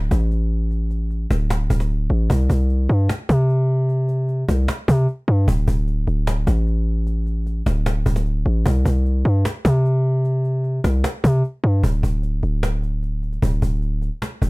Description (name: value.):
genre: hip hop, trap.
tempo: 151 BPM.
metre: 4/4.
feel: half-time.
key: unclear.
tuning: A4 = 440 Hz.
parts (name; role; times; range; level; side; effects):
distorted 808-style bass; bass; 0.0-14.5 s; D1 to C3; -18 LUFS; equal; distortion.
cajon; drums; 0.1-14.5 s; none; -24 LUFS; equal; none.
room: little or no reverb.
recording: rough home demo mix.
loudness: -18 LUFS.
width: side -26 dB against mid.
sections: 0.0-11.8 A section; 11.8-14.5 B section.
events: none.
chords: none.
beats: 0.31 | 0.71 1.11 1.50 1.90 | 2.30 2.70 3.09 3.49 | 3.89 4.29 4.68 5.08 | 5.48 5.88 6.27 6.67 | 7.07 7.46 7.86 8.26 | 8.66 9.05 9.45 9.85 | 10.25 10.64 11.04 11.44 | 11.84 12.23 12.63 13.03 | 13.43 13.82 14.22.